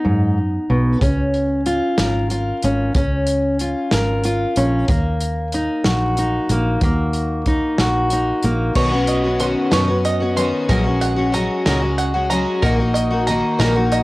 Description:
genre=indie folk with a building arrangement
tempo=62 BPM (dotted quarters)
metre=6/8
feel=straight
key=unclear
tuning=A4 = 440 Hz
part: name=fingerpicked steel-string acoustic guitar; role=accompaniment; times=0.0-10.7 s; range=G#2 to A#4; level=-19 LUFS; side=equal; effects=cassette tape, plate reverb
part: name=fingered electric bass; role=bass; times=0.1-14.0 s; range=G#1 to F#2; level=-21 LUFS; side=equal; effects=none
part: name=natural country drum kit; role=drums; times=1.0-14.0 s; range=crash cymbal, hi-hat, kick drum, snare drum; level=-22 LUFS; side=equal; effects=cassette tape
part: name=picked twelve-string acoustic guitar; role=accompaniment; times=8.8-14.0 s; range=A#2 to F#4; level=-18 LUFS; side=left 2 dB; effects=cassette tape, plate reverb
part: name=bluegrass banjo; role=arpeggios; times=8.8-14.0 s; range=A#4 to B#5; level=-24 LUFS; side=right 4 dB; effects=cassette tape, tape echo, plate reverb
room=light reverb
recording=home recording on cassette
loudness=-16 LUFS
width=side -20 dB against mid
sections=0.0-8.8 A section; 8.8-14.0 B section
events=none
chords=0.0 B; 1.0 C#; 4.9 D#m; 8.8 Badd9; 10.7 F#add9/A#; 12.6 D#m/A#

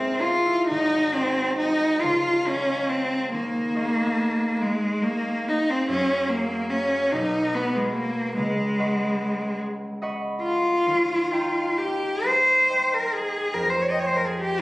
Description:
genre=classical, impressionist duo for cello and harp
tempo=40-50 BPM (dotted quarters)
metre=6/8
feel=rubato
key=unclear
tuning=A4 = 440 Hz
part: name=rich cello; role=melody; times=0.0-14.6 s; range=Ab3 to Eb5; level=-22 LUFS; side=equal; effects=none
part: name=concert harp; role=accompaniment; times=0.0-14.6 s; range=Ab1 to Db6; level=-30 LUFS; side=right 1 dB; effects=none
room=wet recital hall reverb, RT60 1.6 s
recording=recorded on a phone in the room, studio reverb, compression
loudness=-21 LUFS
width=side -19 dB against mid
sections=0.7-14.6 A section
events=none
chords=0.0 Dbm6; 0.7 Abmaj9; 2.0 Dbadd9; 3.3 Eb9sus4; 5.9 Gbmaj9; 7.1 Bsus2; 8.4 Db9sus4; 10.9 Eb13; 13.5 Fm11

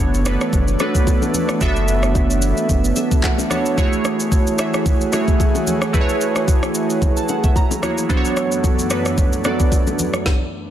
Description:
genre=amapiano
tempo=111 BPM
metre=4/4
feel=swing 55% on 16ths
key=unclear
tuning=A4 = 440 Hz
part: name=glassy digital keys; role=accompaniment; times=0.0-10.3 s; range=F#3 to A#5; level=-20 LUFS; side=right 2 dB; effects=chorus
part: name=airy breathy pad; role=sustained chords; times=0.0-10.2 s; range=F#2 to G#4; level=-24 LUFS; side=equal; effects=chorus
part: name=warm sub bass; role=bass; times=0.0-2.9 s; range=F#1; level=-20 LUFS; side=equal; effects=none
part: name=smooth R&B drum kit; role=drums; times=0.1-10.4 s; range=handclaps, kick drum, rim click, shaker, snare drum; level=-19 LUFS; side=equal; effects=soft clipping on snare
part: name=congas and bongos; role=percussion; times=0.5-10.1 s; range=none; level=-29 LUFS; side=left 3 dB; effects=none
room=light reverb, digital ambience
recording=dense, heavily limited modern master, lossy compression artefacts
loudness=-15 LUFS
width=side -11 dB against mid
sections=0.0-10.7 A section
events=synth keys fill 2.7-3.8, 7.0-8.1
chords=0.0 Bm9/F#; 3.8 F#m9; 7.6 F#7; 8.1 Bm9/F#

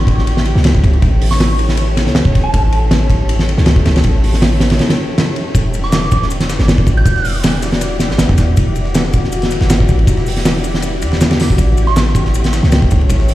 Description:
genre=drum and bass, jungle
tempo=159 BPM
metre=4/4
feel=straight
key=unclear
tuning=A4 = 435 Hz
part: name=soft synth bell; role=melody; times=0.0-3.0, 5.8-7.3, 11.9-12.1 s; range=A5 to G6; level=-24 LUFS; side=right 3 dB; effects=chorus, phaser, dub echo
part: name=granular cloud pad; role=sustained chords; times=0.0-13.3 s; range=E4 to D5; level=-22 LUFS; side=left 2 dB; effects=built-in reverb
part: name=warm 808-style bass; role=bass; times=0.0-13.3 s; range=E1 to E2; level=-14 LUFS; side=equal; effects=none
part: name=oversized low-tuned drum kit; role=drums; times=0.1-13.3 s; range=hi-hat, kick drum, ride cymbal, snare drum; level=-14 LUFS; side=equal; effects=none
part: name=breakbeat sampler-style drum kit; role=drums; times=5.6-13.3 s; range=hi-hat, shaker, snare drum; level=-28 LUFS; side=left 2 dB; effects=overdrive, high-pass filter on snare, high-pass filter on perc, high-pass filter on hats, high-pass filter on room
room=small room ambience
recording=played on a big sound system in a bare room, large studio reverb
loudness=-11 LUFS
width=side -15 dB against mid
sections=0.0-13.3 A section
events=break 4.8-5.5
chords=0.0 A7; 5.5 Em9; 11.6 A7

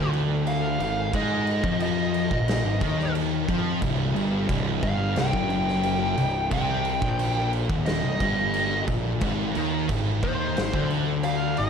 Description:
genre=stoner and doom metal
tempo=89 BPM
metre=4/4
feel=straight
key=C minor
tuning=A4 = 441 Hz
part: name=fuzz lead guitar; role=melody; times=0.0-11.7 s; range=C5 to G5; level=-28 LUFS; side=left 1 dB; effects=wah, distortion, slapback echo
part: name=thick fuzz guitar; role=riff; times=0.0-11.7 s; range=C2 to Ab3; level=-28 LUFS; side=left 9 dB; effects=distortion
part: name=thick fuzz guitar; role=riff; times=0.0-11.7 s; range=C2 to Ab3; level=-29 LUFS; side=right 9 dB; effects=distortion
part: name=fuzz picked electric bass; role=bass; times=0.0-11.7 s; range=C1 to Ab2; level=-30 LUFS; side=equal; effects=overdrive
part: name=oversized low-tuned drum kit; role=drums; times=0.1-11.7 s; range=crash cymbal, kick drum, snare drum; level=-29 LUFS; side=right 1 dB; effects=none
room=light reverb, small room ambience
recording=none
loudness=-22 LUFS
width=side -6 dB against mid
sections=0.0-11.7 A section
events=none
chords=0.0 Ab5; 3.8 Cm; 9.2 Ab5

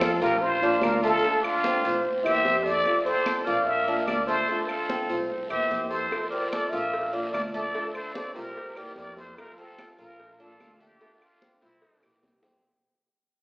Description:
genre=latin, Cuban son and guajira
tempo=147 BPM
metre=4/4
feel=straight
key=F major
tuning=A4 = 436 Hz
part: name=trumpet with plunger mute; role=melody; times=0.0-12.2 s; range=E4 to E5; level=-26 LUFS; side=equal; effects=none
part: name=bright silver concert flute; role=second line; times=0.0-12.2 s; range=C4 to C5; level=-33 LUFS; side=equal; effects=none
part: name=flamenco guitar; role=accompaniment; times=0.0-12.6 s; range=C3 to F4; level=-33 LUFS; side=equal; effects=none
part: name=Cuban tres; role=arpeggios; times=0.0-12.6 s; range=A3 to C5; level=-30 LUFS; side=equal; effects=none
part: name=upright bass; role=bass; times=0.0-12.6 s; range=Bb1 to F2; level=-40 LUFS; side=equal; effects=none
part: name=claves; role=percussion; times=0.0-12.2 s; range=none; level=-40 LUFS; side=right 1 dB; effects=none
part: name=congas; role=percussion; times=0.0-12.6 s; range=none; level=-36 LUFS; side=equal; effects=none
part: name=guiro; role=percussion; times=0.0-12.6 s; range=none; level=-44 LUFS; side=right 1 dB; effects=none
part: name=cowbell and bongos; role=percussion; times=6.1-12.6 s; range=none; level=-42 LUFS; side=equal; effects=none
room=wet recital hall reverb, RT60 1.6 s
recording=recorded in a church or concert hall, AM radio sound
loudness=-23 LUFS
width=side -27 dB against mid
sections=0.0-12.6 A section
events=fade-out 0.0-12.6; drum fill 12.4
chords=0.4 Bb; 1.2 Dm7; 2.0 C7; 2.9 F; 3.7 Bb; 4.5 Dm7; 5.3 C7; 6.1 F; 6.9 Bb; 7.7 Dm7; 8.6 C7; 9.4 F; 10.2 Bb; 11.0 Dm7; 11.8 C7

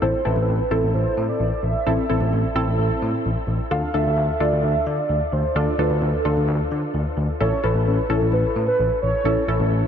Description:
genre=synth-pop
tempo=130 BPM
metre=4/4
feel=straight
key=unclear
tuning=A4 = 444 Hz
part: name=warm velvety synth lead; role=melody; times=0.0-9.7 s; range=A4 to F5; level=-24 LUFS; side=right 2 dB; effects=chorus, tape echo
part: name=funky polysynth comp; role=accompaniment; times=0.0-9.9 s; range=C4 to A4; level=-24 LUFS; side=left 1 dB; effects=chorus
part: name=bell-like tine electric piano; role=bass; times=0.0-9.8 s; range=A1 to D3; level=-22 LUFS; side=left 1 dB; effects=none
room=moderate huge ambient reverb, RT60 8.6 s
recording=dreamy mix soaked in reverb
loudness=-19 LUFS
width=side -8 dB against mid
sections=0.0-9.9 A section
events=none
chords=0.0 Am; 3.7 Dm; 7.4 A

